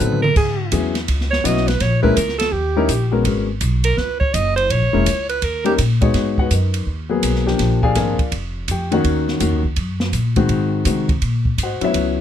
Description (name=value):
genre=jazz, small-group swing and bop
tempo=166 BPM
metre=4/4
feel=swing 64% on 8ths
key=G# minor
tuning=A4 = 440 Hz
part: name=warm alto saxophone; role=second line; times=0.0-5.7 s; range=G4 to D#5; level=-20 LUFS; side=right 4 dB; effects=none
part: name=warm upright piano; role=accompaniment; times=0.0-12.2 s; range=D#3 to G#5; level=-19 LUFS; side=left 4 dB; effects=none
part: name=upright bass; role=bass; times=0.0-12.2 s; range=E1 to B#2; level=-20 LUFS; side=equal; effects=none
part: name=open jazz drum kit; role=drums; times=0.0-12.1 s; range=crash cymbal, hi-hat, kick drum, ride cymbal, snare drum, toms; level=-23 LUFS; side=right 1 dB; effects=none
room=light reverb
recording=none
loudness=-16 LUFS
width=side -10 dB against mid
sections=0.0-6.1 A section; 6.1-12.2 A section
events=alto saxophone solo 0.0-6.1; drum fill 0.0-0.4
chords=0.4 E69; 1.8 A#m7b5; 2.5 D#7b9; 3.3 G#m11; 4.7 A#m7b5; 5.4 D#7; 6.1 G#m9; 7.6 A#7; 9.0 D#m7; 10.5 G#7